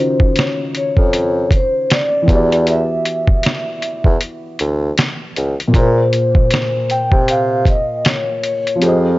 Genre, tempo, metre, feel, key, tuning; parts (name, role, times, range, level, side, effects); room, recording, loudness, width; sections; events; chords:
lo-fi hip hop; 78 BPM; 4/4; swing 60% on 16ths; A4 = 440 Hz
vibraphone with soft mallets; melody; 0.0-9.2 s; C5 to G5; -18 LUFS; equal; low-pass filter, tape echo
felt-muted upright piano; accompaniment; 0.0-9.2 s; Bb2 to Eb5; -20 LUFS; left 1 dB; low-pass filter
lo-fi sampler-style drum kit; drums; 0.2-9.0 s; hi-hat, kick drum, snare drum; -15 LUFS; equal
warm bassoon; bass; 1.0-9.2 s; Db2 to C3; -18 LUFS; equal
light reverb; dry, gritty hardware recording, transformer saturation, nothing above 7.7 kHz; -13 LUFS; side -18 dB against mid
0.0-9.2 A section
0.0 Ebm9; 2.3 Em9; 5.7 Bbsus2